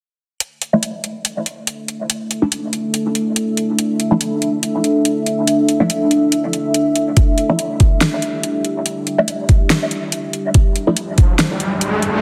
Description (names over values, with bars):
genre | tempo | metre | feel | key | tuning
deep dubstep | 142 BPM | 4/4 | swing 55% on 16ths, half-time | unclear | A4 = 440 Hz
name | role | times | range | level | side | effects
deep dark ambient pad | sustained chords | 1.8-12.2 s | D4 to E5 | -21 LUFS | equal | chorus, built-in reverb
deep house drum kit | drums | 0.4-12.1 s | hi-hat, snare drum | -21 LUFS | equal | overdrive
filtered dub chord stab | stabs | 0.7-10.9 s | F3 to E4 | -22 LUFS | equal | phaser, lush chorus, dub echo
electronic kick drum | drums | 7.2-11.3 s | none | -14 LUFS | equal | none
riser | sound effects | 11.1-12.2 s | none | -22 LUFS | equal | none
room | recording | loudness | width
moderate lush hall reverb, RT60 1.7 s | heavily compressed radio sound | -17 LUFS | mono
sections
0.4-12.2 A section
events
filter sweep on synth stab 0.4-12.2; riser 11.1-12.2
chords
0.4 Dsus2